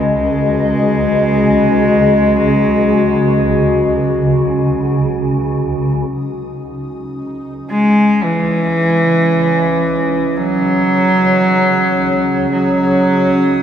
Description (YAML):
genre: dark ambient drone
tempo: free time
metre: none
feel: none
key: unclear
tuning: A4 = 440 Hz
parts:
  - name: warm cello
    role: melody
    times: 0.0-13.6 s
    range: E3 to G#3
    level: -14 LUFS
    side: equal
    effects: tape echo
  - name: dark analog pad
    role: sustained chords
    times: 0.0-13.6 s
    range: C#4 to D#5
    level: -17 LUFS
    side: left 1 dB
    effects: lush chorus
  - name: swarming drone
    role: drone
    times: 0.0-13.6 s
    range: C#2 to C#3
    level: -20 LUFS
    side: right 1 dB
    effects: built-in reverb
  - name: bubbling stepped-filter texture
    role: texture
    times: 6.1-13.6 s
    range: D#4 to D#6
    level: -34 LUFS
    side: right 3 dB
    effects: none
room: wet cathedral reverb, RT60 6.0 s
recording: none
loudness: -11 LUFS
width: side -9 dB against mid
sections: 0.0-6.1 A section; 6.1-13.6 B section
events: fade-in on synth drone 6.1-13.6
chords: 0.0 C#5; 6.1 F#sus2/C#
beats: free time